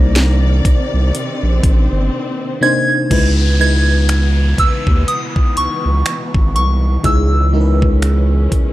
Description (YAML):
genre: contemporary R&B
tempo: 61 BPM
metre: 4/4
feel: swing 58% on 16ths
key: unclear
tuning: A4 = 440 Hz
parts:
  - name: soft synth bell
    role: melody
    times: 0.0-8.0 s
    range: Db6 to Bb6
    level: -19 LUFS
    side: right 1 dB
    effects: chorus, phaser, tape echo
  - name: FM electric piano with soft pad layer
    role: accompaniment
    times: 0.0-8.7 s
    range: C3 to C5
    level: -21 LUFS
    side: left 1 dB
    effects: chorus
  - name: warm studio string section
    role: sustained chords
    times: 0.0-8.7 s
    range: Cb3 to D5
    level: -25 LUFS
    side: left 1 dB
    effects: none
  - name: saturated sub bass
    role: bass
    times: 0.0-8.6 s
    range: G1 to Eb2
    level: -14 LUFS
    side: equal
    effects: none
  - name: trap drum kit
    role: drums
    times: 0.2-8.7 s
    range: crash cymbal, finger snaps, hi-hat, kick drum, snare drum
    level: -15 LUFS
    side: equal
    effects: none
  - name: downlifter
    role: sound effects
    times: 3.1-8.7 s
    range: none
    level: -28 LUFS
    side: equal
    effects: none
room: digital ambience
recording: dry, gritty hardware recording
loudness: -12 LUFS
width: side -16 dB against mid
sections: 0.0-3.1 A section; 3.1-8.7 B section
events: drums muted 2.1-3.1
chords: 0.0 Cm9; 3.1 Dbm9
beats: 0.16 1.14 2.13 | 3.11 4.09 5.08 6.06 | 7.04 8.03